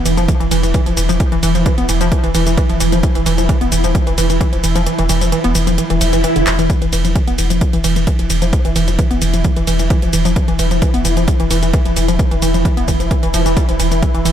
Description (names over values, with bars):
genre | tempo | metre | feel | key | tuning
driving peak-time techno | 131 BPM | 4/4 | straight | unclear | A4 = 441 Hz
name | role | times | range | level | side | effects
saturated sub bass | bass | 0.0-14.3 s | E1 | -18 LUFS | equal | overdrive, sidechain pumping, low-pass filter
swarming drone | drone | 0.0-14.3 s | E3 to E4 | -21 LUFS | equal | built-in reverb, sidechain pumping
warbly dusty pluck | riff | 0.1-14.3 s | D3 to B3 | -19 LUFS | equal | chorus, overdrive, sidechain pumping, tape echo
techno drum kit | drums | 0.1-14.3 s | handclaps, hi-hat, ride cymbal, shaker | -22 LUFS | right 1 dB | sidechain pumping on hats, sidechain pumping on cymbals, sidechain pumping on perc
electronic kick drum | drums | 0.3-14.1 s | none | -15 LUFS | equal | overdrive
swell | sound effects | 6.0-6.7 s | none | -20 LUFS | right 2 dB | none
room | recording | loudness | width
little or no reverb | none | -12 LUFS | side -10 dB against mid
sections
0.0-14.3 A section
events
kick drops out 4.9-6.7; swell 6.0-6.7; drum fill 6.5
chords
none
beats
0.28 0.74 | 1.20 1.66 2.12 2.58 | 3.03 3.49 3.95 4.41 | 4.87 5.32 5.78 6.24 | 6.70 7.16 7.61 8.07 | 8.53 8.99 9.45 9.90 | 10.36 10.82 11.28 11.73 | 12.19 12.65 13.11 13.57 | 14.03